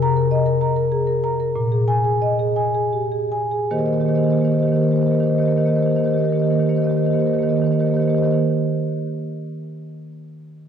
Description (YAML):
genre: classical, contemporary piece for solo marimba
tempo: 76-102 BPM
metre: 3/4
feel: rubato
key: Eb major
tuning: A4 = 439 Hz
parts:
  - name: marimba with soft mallets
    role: solo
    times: 0.0-8.4 s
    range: Bb2 to Bb5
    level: -17 LUFS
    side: equal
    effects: none
room: wet church reverb, RT60 2.9 s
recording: dark, warm production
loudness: -17 LUFS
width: side -8 dB against mid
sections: 0.0-3.7 A section; 3.7-8.3 B section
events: slowing down 0.0-3.7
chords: 0.0 Cm7; 1.6 Bb7sus4; 3.7 Eb6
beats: 0.31 0.92 | 1.55 2.22 2.93 | 3.71 4.48 5.26 | 6.04 6.80 7.57